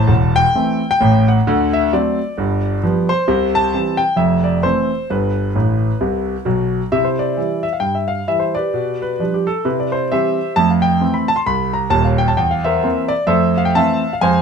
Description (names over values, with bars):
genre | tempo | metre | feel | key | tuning
jazz, stride piano | 132 BPM | 4/4 | swing 60% on 8ths | C major | A4 = 440 Hz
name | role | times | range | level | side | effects
warm concert grand piano | solo | 0.0-14.4 s | Eb1 to C6 | -14 LUFS | equal | none
room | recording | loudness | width
moderate studio reverb, RT60 0.7 s | minimal, uncompressed stereo recording | -14 LUFS | side -6 dB against mid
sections
0.0-6.9 A section; 6.9-14.4 B section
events
grand piano fill 5.6-6.9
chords
0.0 Am; 1.5 D7; 2.4 G7; 3.3 C; 4.2 Fmaj7; 5.1 G; 6.9 C; 8.7 G7/B; 9.7 C; 10.6 Fmaj7; 12.4 C7/E; 13.3 Fmaj7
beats
0.09 0.54 1.00 | 1.46 1.91 2.37 2.82 | 3.28 3.73 4.19 4.64 | 5.10 5.55 6.01 6.46 | 6.92 7.38 7.83 8.29 | 8.74 9.20 9.65 10.11 | 10.57 11.02 11.48 11.94 | 12.39 12.85 13.31 13.76 | 14.22